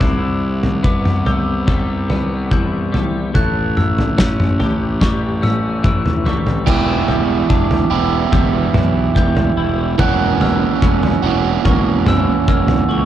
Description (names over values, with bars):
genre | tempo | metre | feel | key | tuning
post-rock | 72 BPM | 4/4 | straight | E minor | A4 = 444 Hz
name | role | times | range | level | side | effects
pedal steel guitar | sustained chords | 0.0-13.1 s | E4 to G5 | -30 LUFS | left 2 dB | none
glockenspiel with soft plastic mallets | arpeggios | 0.0-13.1 s | C#6 to G6 | -26 LUFS | left 1 dB | slapback echo
twelve-string electric guitar | arpeggios | 0.0-13.1 s | E2 to G4 | -24 LUFS | left 4 dB | ensemble chorus, slapback echo
fuzz fingered electric bass | bass | 0.0-13.1 s | E1 to C#2 | -20 LUFS | left 1 dB | overdrive
loose indie drum kit | drums | 0.0-12.9 s | crash cymbal, kick drum, snare drum, toms | -17 LUFS | equal | none
overdriven electric guitar | riff | 6.7-13.1 s | E3 to G4 | -17 LUFS | right 11 dB | spring reverb
room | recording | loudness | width
light reverb, small room ambience | dark, warm production | -14 LUFS | side -11 dB against mid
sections
0.0-6.7 A section; 6.7-13.1 B section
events
drum fill 5.0-6.7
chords
0.0 Cmaj7; 3.3 A7; 6.7 Em7; 10.0 F#7/E